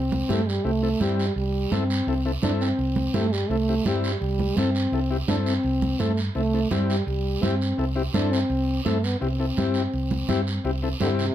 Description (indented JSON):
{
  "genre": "latin, cumbia",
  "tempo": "168 BPM",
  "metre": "4/4",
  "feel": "straight",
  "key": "C major",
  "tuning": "A4 = 441 Hz",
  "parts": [
    { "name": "mellow French horn", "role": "melody", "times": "0.0-11.3 s", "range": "C3 to D4", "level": "-26 LUFS", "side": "right 1 dB", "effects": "plate reverb" },
    { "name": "hollow-body short-scale fingered electric bass", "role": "bass", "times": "0.0-11.3 s", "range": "C2 to G2", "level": "-26 LUFS", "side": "right 1 dB", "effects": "none" },
    { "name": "congas", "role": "percussion", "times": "0.1-11.2 s", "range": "none", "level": "-29 LUFS", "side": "right 4 dB", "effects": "none" },
    { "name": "combo organ", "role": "accompaniment", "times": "0.3-11.3 s", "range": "C4 to A4", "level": "-28 LUFS", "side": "left 7 dB", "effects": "none" },
    { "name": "guiro", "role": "percussion", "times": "0.3-11.3 s", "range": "none", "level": "-35 LUFS", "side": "right 5 dB", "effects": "none" }
  ],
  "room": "moderate studio reverb, RT60 0.6 s",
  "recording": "none",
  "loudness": "-22 LUFS",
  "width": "side -11 dB against mid",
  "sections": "0.0-11.3 A section",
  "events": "none",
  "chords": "0.0 C"
}